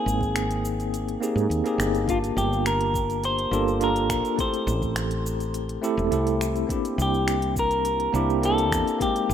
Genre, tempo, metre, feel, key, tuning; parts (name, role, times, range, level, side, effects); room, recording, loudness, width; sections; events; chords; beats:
sunset chillout; 104 BPM; 4/4; straight; A4 = 442 Hz
clean electric guitar; melody; 0.0-9.3 s; F4 to C5; -27 LUFS; left 1 dB; tape echo
bell-like tine electric piano; accompaniment; 0.0-9.3 s; Ab3 to A5; -26 LUFS; moving between left 4 dB and right 4 dB; medium stereo tremolo, auto-pan, digital delay
woody fretless electric bass; bass; 0.1-9.3 s; E1 to Ab2; -27 LUFS; equal
deep house drum kit; drums; 0.1-9.3 s; cabasa, finger snaps, hi-hat; -34 LUFS; equal
electronic kick drum; drums; 0.2-9.1 s; -32 LUFS; equal
moderate plate reverb, RT60 3.0 s; rough home demo mix; -22 LUFS; side -9 dB against mid
0.0-9.3 A section
0.0 Abmaj7; 2.1 Gm7; 4.4 Am7; 6.7 C7
0.35 0.93 1.50 | 2.08 2.66 3.23 3.81 | 4.39 4.96 5.54 6.12 | 6.70 7.27 7.85 8.43 | 9.00